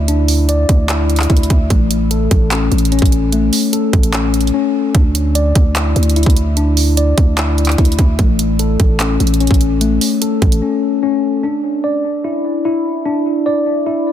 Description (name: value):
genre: hip hop, trap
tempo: 148 BPM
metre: 4/4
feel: half-time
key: unclear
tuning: A4 = 440 Hz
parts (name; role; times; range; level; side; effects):
- mellow tine electric piano; arpeggios; 0.0-14.1 s; A3 to D5; -16 LUFS; left 3 dB; analog chorus, low-pass filter, tape echo
- growling 808-style bass; bass; 0.0-10.6 s; A1 to D2; -15 LUFS; right 1 dB; none
- trap drum kit; drums; 0.1-10.6 s; handclaps, hi-hat, kick drum; -15 LUFS; right 1 dB; none
room: digital ambience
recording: dense, heavily limited modern master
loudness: -12 LUFS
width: side -10 dB against mid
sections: 0.0-11.4 A section; 11.4-14.1 B section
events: drums muted 4.5-4.9; break 10.6-11.4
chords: 0.0 Dsus2; 1.7 A; 4.9 Dsus2; 8.2 A; 11.4 Dsus2